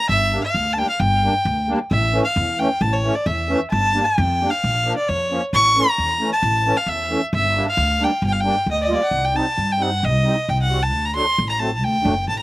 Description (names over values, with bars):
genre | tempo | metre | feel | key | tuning
klezmer | 133 BPM | 2/4 | straight | G dorian sharp4, C dorian sharp4 from 9.1 s | A4 = 441 Hz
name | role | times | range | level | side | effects
warm violin | melody | 0.0-12.4 s | C#5 to C#6 | -19 LUFS | equal | slapback echo
upright bass | bass | 0.1-12.4 s | F#1 to G2 | -22 LUFS | equal | none
musette accordion | accompaniment | 0.3-12.1 s | E3 to F#4 | -24 LUFS | equal | slapback echo
room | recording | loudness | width
little or no reverb | recorded outdoors, with no room sound | -17 LUFS | side -17 dB against mid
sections
0.0-1.9 A section; 1.9-9.1 A section; 9.1-12.4 B section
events
none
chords
0.1 Gm; 1.9 A; 3.7 Gm; 4.6 Bb5; 5.5 A; 7.3 Gm; 9.1 Cm; 10.9 D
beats
| 0.08 0.54 | 0.99 1.45 | 1.90 2.35 | 2.81 3.26 | 3.71 4.17 | 4.62 5.07 | 5.52 5.97 | 6.42 6.87 | 7.32 7.77 | 8.22 8.67 | 9.12 9.57 | 10.02 10.47 | 10.92 11.37 | 11.82 12.26